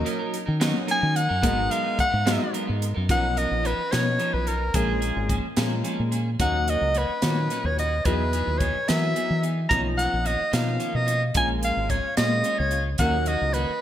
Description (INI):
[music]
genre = electric jazz fusion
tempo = 73 BPM (dotted quarters)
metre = 6/8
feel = straight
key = Eb minor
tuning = A4 = 436 Hz
[part]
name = warm baby grand piano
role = accompaniment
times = 0.0-13.6 s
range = Bb2 to C#5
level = -30 LUFS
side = left 1 dB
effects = analog chorus
[part]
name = clean electric guitar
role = stabs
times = 0.0-13.7 s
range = D#3 to Bb4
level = -33 LUFS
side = right 2 dB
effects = wide subtle chorus, digital delay
[part]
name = deep dub fingered electric bass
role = bass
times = 0.0-13.7 s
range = Ab1 to E3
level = -26 LUFS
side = equal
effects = none
[part]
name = crisp fusion drum kit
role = drums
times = 0.1-13.7 s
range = hi-hat, kick drum, snare drum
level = -28 LUFS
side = equal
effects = gated reverb
[part]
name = breathy soprano saxophone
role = melody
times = 0.9-13.8 s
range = Ab4 to A#5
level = -25 LUFS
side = equal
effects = none
[sound]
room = moderate plate reverb, RT60 1.9 s, small room ambience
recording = bright 1980s-style digital production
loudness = -21 LUFS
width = side -11 dB against mid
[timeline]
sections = 0.0-3.1 A section; 3.1-13.8 B section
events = soprano saxophone solo 0.0-3.1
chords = 0.0 Ebm7; 1.4 Abm9; 3.1 Bmaj9#11; 4.7 Bbm7; 6.4 Ebm7; 8.1 Emaj9; 9.7 Bmaj9#11; 11.4 Bbm7; 13.0 Ebm7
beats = 0.61 | 1.44 2.27 | 3.09 3.92 | 4.75 5.58 | 6.40 7.23 | 8.05 8.88 | 9.71 10.53 | 11.35 12.18 | 13.00